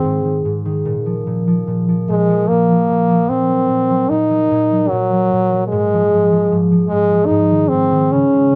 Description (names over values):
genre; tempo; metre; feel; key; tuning
children's music, lullaby; 74 BPM; 3/4; rubato; unclear; A4 = 440 Hz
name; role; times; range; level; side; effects
warm French horn; melody; 0.0-8.6 s; Gb3 to Eb4; -17 LUFS; equal; none
concert harp; accompaniment; 0.0-8.6 s; Ab2 to Bb3; -19 LUFS; equal; none
room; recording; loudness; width
moderate studio reverb, RT60 0.6 s; none; -16 LUFS; mono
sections
0.0-8.6 A section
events
none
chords
0.0 Ab; 0.9 Bb5; 3.3 Ebm/Bb; 5.7 Fm/Ab; 7.3 Ab